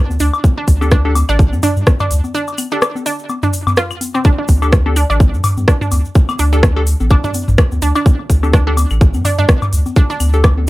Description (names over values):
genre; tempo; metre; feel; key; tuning
minimal techno; 126 BPM; 4/4; swing 57% on 16ths; unclear; A4 = 438 Hz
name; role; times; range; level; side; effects
saturated sub bass; bass; 0.1-10.7 s; A1 to G2; -15 LUFS; equal; sidechain pumping
cabasa; percussion; 0.1-10.5 s; none; -31 LUFS; left 2 dB; none
electronic congas, woodblock, claves and toms; percussion; 0.1-10.7 s; none; -20 LUFS; left 2 dB; overdrive
resonant blip pluck; riff; 0.2-10.1 s; C4 to F4; -21 LUFS; right 3 dB; chorus, vintage 12-bit sampler grit, sidechain pumping, digital delay
minimal click drum kit; drums; 0.2-10.5 s; hi-hat, rim click; -18 LUFS; equal; none
electronic kick drum; drums; 0.4-10.5 s; none; -11 LUFS; equal; none
wavetable chord stab; stabs; 0.8-10.4 s; D4 to A4; -22 LUFS; left 2 dB; phaser, digital delay
room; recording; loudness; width
little or no reverb; none; -11 LUFS; side -18 dB against mid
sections
0.0-10.7 A section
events
break 2.3-4.2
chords
0.0 Dsus4